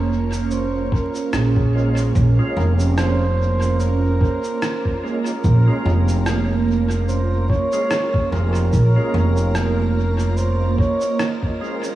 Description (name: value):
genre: ambient dub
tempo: 73 BPM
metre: 4/4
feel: swing 56% on 16ths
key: Bb minor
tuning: A4 = 440 Hz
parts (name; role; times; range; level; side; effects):
- trumpet with bucket mute; melody; 0.0-12.0 s; Ab4 to Db5; -26 LUFS; right 1 dB; dub echo
- soft additive organ-like pad; sustained chords; 0.0-12.0 s; Bb3 to Eb5; -24 LUFS; right 5 dB; ensemble chorus, built-in reverb
- upright bass; bass; 0.0-10.8 s; F1 to Bb1; -18 LUFS; equal; none
- electronic cabasa and rim click; drums; 0.3-12.0 s; none; -31 LUFS; equal; overdrive, dub echo
- electronic kick drum; drums; 0.9-11.6 s; none; -20 LUFS; equal; overdrive
- percussive tonewheel organ; stabs; 1.7-11.9 s; Ab3 to Bb4; -31 LUFS; equal; overdrive, chorus vibrato, slow rotary speaker, vintage 12-bit sampler grit, dub echo
room: moderate cathedral reverb, RT60 4.5 s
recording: dreamy mix soaked in reverb, vinyl crackle, small room ambience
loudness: -16 LUFS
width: side -14 dB against mid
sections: 0.0-12.0 A section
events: none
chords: 0.0 Bbm7